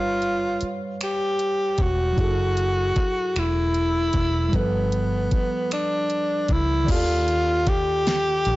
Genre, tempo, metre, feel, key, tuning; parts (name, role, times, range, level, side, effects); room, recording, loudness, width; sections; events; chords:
slow six-eight R&B; 51 BPM (dotted quarters); 6/8; straight; A4 = 441 Hz
breathy tenor saxophone; melody; 0.0-8.6 s; B3 to G4; -23 LUFS; equal; slapback echo
tine electric piano; accompaniment; 0.0-8.6 s; D#3 to F5; -30 LUFS; right 2 dB
vintage muted fingered electric bass; bass; 0.0-8.6 s; E1 to D#2; -26 LUFS; equal; tube saturation
smooth R&B drum kit; drums; 0.2-8.6 s; crash cymbal, finger snaps, hi-hat, kick drum, snare drum; -26 LUFS; equal; soft clipping on snare
light reverb; blown-out, overdriven recording, overdrive, nothing above 7.7 kHz; -20 LUFS; side -18 dB against mid
0.0-6.9 A section; 6.9-8.6 B section
0.0 G7#11; 2.2 F#m9; 4.5 G9; 6.9 D#maj9#11